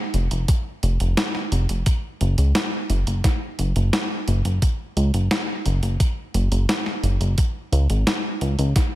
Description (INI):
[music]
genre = synthwave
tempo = 87 BPM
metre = 4/4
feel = straight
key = unclear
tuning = A4 = 440 Hz
[part]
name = chorused synth bass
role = bass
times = 0.1-8.7 s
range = F1 to Db2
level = -19 LUFS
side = equal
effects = none
[part]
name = clean 12-bit digital drum machine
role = drums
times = 0.1-8.9 s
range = hi-hat, snare drum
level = -25 LUFS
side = equal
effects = gated reverb
[part]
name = electronic kick drum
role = drums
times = 0.5-8.9 s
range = none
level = -19 LUFS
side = equal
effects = none
[sound]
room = little or no reverb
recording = none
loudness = -19 LUFS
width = side -16 dB against mid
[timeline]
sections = 0.0-9.0 A section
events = none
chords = none